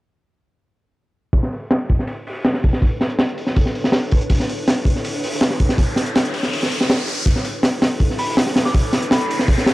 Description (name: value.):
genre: drum and bass, jungle.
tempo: 162 BPM.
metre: 4/4.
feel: straight.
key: B minor.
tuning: A4 = 440 Hz.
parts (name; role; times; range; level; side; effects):
granular cloud pad; sustained chords; 2.2-9.7 s; D4 to C#5; -28 LUFS; equal; built-in reverb, vintage 12-bit sampler grit.
crunchy breakbeat drum kit; drums; 1.3-9.7 s; hi-hat, kick drum, snare drum; -17 LUFS; equal; low-pass filter on kick, low-pass filter on hats, low-pass filter on snare, low-pass filter on room.
riser; sound effects; 5.0-9.7 s; none; -28 LUFS; equal; none.
soft synth bell; melody; 8.2-9.3 s; B5 to D6; -26 LUFS; left 1 dB; chorus, low-pass filter, dub echo.
room: light reverb, studio reverb.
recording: dry, gritty hardware recording, cassette tape.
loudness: -16 LUFS.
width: side -18 dB against mid.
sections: 1.3-7.3 A section; 7.3-9.7 B section.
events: filter sweep on drum 1.3-7.3; riser 5.0-7.3, 7.3-9.7; kick drops out 6.5-7.3; build-up 7.3-9.7.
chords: 1.3 Bm11.